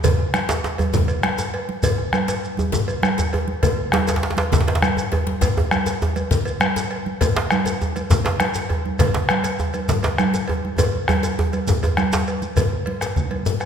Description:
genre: west african traditional, West African drum ensemble.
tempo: 134 BPM (dotted quarters).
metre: 12/8.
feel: straight.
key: none.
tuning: none.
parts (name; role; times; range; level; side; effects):
bombo; percussion; 0.0-13.7 s; none; -24 LUFS; left 2 dB; none.
congas; percussion; 0.0-13.4 s; none; -25 LUFS; right 4 dB; none.
cowbell; percussion; 0.0-13.7 s; none; -28 LUFS; right 2 dB; none.
djembe; percussion; 0.0-13.6 s; none; -26 LUFS; left 5 dB; none.
djembe; percussion; 0.0-12.3 s; none; -23 LUFS; right 2 dB; none.
shekere; percussion; 0.0-13.7 s; none; -31 LUFS; right 2 dB; none.
room: wet scoring stage reverb, RT60 1.9 s.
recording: minimal, uncompressed stereo recording.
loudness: -18 LUFS.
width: side -8 dB against mid.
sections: 0.0-12.6 A section; 12.6-13.7 B section.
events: drum fill 4.8-5.4, 10.8-12.6.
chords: none.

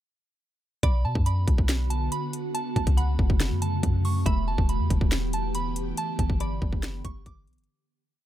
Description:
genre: hip hop, trap.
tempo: 140 BPM.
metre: 4/4.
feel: half-time.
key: B minor.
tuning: A4 = 438 Hz.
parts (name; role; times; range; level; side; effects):
soft synth bell; melody; 0.8-7.7 s; A5 to D6; -34 LUFS; right 4 dB; chorus.
glassy wavetable pluck; second line; 0.8-7.2 s; D5 to F#5; -38 LUFS; right 2 dB; chorus, ping-pong delay.
ethereal airy pad; sustained chords; 1.1-7.7 s; C#3 to G4; -32 LUFS; right 1 dB; ensemble chorus, built-in reverb.
clean 808-style bass; bass; 0.8-7.7 s; E1 to B2; -26 LUFS; equal; none.
trap drum kit; drums; 0.8-7.7 s; finger snaps, hi-hat, kick drum, snare drum; -25 LUFS; equal; none.
room: little or no reverb.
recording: none.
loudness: -23 LUFS.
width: side -12 dB against mid.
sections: 0.8-7.7 hook.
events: fade-out 6.0-7.7.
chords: 0.8 Bm; 2.5 F#m; 4.3 Em; 6.0 G.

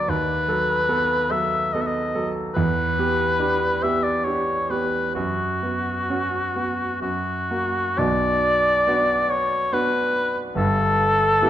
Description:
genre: classical, romantic duo for oboe and grand piano.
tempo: 59-74 BPM.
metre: 3/4.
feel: rubato.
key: B minor.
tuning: A4 = 440 Hz.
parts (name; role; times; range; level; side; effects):
warm oboe; melody; 0.0-11.5 s; F#4 to E5; -21 LUFS; left 1 dB; none.
clear concert grand piano; accompaniment; 0.0-11.5 s; G1 to B4; -24 LUFS; right 2 dB; none.
room: wet recital hall reverb, RT60 1.5 s.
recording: dark, warm production.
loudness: -20 LUFS.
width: side -11 dB against mid.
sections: 0.0-8.0 A section; 8.0-11.5 B section.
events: none.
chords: 0.1 B7/D#; 2.6 Em7; 5.2 F#sus4; 7.0 F#; 8.0 Bm; 10.6 N.C..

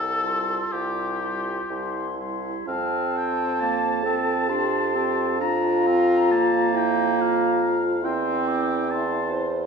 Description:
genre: classical, slow romantic movement for wind quintet.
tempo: 60-71 BPM.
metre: 3/4.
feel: rubato.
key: F major.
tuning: A4 = 441 Hz.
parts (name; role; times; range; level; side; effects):
warm oboe; second line; 0.0-9.5 s; G4 to Bb5; -28 LUFS; left 3 dB; none.
mellow bassoon; bass; 0.0-9.7 s; C2 to F2; -28 LUFS; right 2 dB; none.
mellow concert flute; melody; 0.2-9.5 s; A5 to D6; -29 LUFS; left 4 dB; none.
clear clarinet; accompaniment; 0.2-9.5 s; Bb3 to F4; -28 LUFS; right 9 dB; none.
mellow French horn; accompaniment; 0.2-9.7 s; G3 to C5; -26 LUFS; left 1 dB; none.
room: wet recital hall reverb, RT60 1.6 s.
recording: minimal, uncompressed stereo recording.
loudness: -21 LUFS.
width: side -5 dB against mid.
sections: 0.0-2.7 A section; 2.7-9.7 B section.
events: none.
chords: 0.0 Csus4; 1.7 C; 2.7 F; 5.4 Bb5/F; 8.0 C/E.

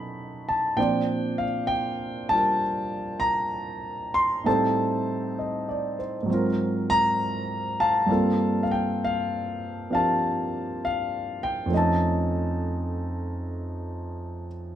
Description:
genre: jazz ballad.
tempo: 66 BPM.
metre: 4/4.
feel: swing 67% on 8ths.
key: Bb major.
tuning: A4 = 439 Hz.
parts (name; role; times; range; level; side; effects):
warm concert grand piano; solo; 0.0-14.8 s; F2 to C6; -24 LUFS; equal; none.
room: moderate large studio reverb, RT60 1.1 s.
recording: band playing live in one room.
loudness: -23 LUFS.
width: side -10 dB against mid.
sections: 0.0-14.8 A section.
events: none.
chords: 0.0 B9; 0.8 Bbmaj9; 4.5 Am7b5; 6.3 Ab13; 8.1 Gm11; 11.7 Faug7.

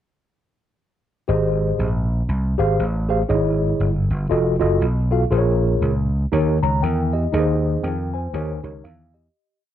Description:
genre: uptempo gospel.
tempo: 119 BPM.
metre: 4/4.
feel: swing 60% on 8ths.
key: Ab major.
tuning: A4 = 437 Hz.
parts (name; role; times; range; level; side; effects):
mellow tine electric piano; accompaniment; 1.3-9.6 s; Ab2 to Bb5; -21 LUFS; left 1 dB; medium stereo tremolo.
vintage slap bass; bass; 1.3-9.3 s; F1 to F2; -21 LUFS; equal; none.
room: light reverb.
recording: dark, warm production.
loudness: -18 LUFS.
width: side -11 dB against mid.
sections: 1.3-9.3 verse.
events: fade-out 7.3-9.3.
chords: 1.3 Abmaj7; 3.3 Dbmadd9/Ab; 4.3 F7b9; 5.3 Bbm7; 6.3 Eb7; 7.3 Ab/Eb; 8.3 Eb7.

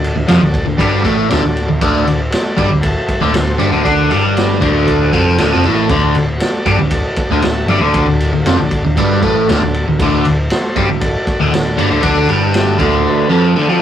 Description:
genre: garage rock duo or trio.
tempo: 117 BPM.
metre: 4/4.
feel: straight.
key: D major.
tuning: A4 = 442 Hz.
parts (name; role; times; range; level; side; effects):
combo organ; sustained chords; 0.0-13.8 s; F#4 to E5; -22 LUFS; equal; none.
crunchy overdriven guitar; riff; 0.0-13.8 s; D2 to D4; -13 LUFS; equal; phaser.
picked electric bass; bass; 0.0-13.0 s; D1 to D2; -19 LUFS; equal; overdrive.
vintage drum kit; drums; 0.0-12.9 s; kick drum, ride cymbal, snare drum; -19 LUFS; equal; none.
room: moderate studio reverb, RT60 0.5 s.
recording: rough rehearsal-room recording, tube saturation.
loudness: -11 LUFS.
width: side -10 dB against mid.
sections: 0.0-13.8 A section.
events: none.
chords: 0.0 D.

